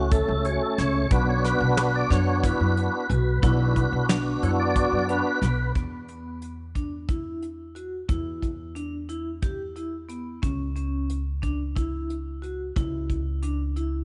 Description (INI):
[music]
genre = progressive instrumental, band music in an uneven meter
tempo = 180 BPM (eighths)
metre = 7/8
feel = straight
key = unclear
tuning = A4 = 440 Hz
[part]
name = tonewheel organ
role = accompaniment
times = 0.0-5.7 s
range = A3 to D5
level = -27 LUFS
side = equal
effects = chorus vibrato, slow rotary speaker
[part]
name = upright bass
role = bass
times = 0.0-14.0 s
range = B1 to F#2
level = -29 LUFS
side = equal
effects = none
[part]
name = vibraphone with hard mallets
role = arpeggios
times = 0.1-13.9 s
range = B3 to A4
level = -34 LUFS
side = equal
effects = none
[part]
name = soft brush drum kit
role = drums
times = 0.1-13.9 s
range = hi-hat, kick drum, snare drum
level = -29 LUFS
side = equal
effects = none
[sound]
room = light reverb, small room ambience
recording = nothing above 10.4 kHz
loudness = -26 LUFS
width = mono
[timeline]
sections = 0.0-5.8 A section; 5.8-14.0 B section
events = tonewheel organ solo 0.0-5.8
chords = 0.0 F#m; 1.1 Bm; 5.8 E5; 10.4 C#m